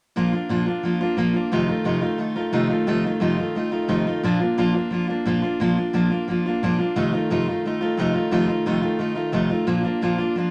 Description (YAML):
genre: rock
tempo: 177 BPM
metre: 4/4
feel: straight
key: Bb major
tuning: A4 = 440 Hz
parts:
  - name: picked steel-string acoustic guitar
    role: solo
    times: 0.2-10.5 s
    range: F2 to F4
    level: -22 LUFS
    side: equal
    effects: none
room: moderate studio ambience, RT60 0.4 s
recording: none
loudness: -22 LUFS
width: mono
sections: 0.2-5.6 A section; 5.6-10.5 B section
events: none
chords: 0.2 Bb; 1.5 F7; 4.2 Bb; 7.0 F7; 9.7 Bb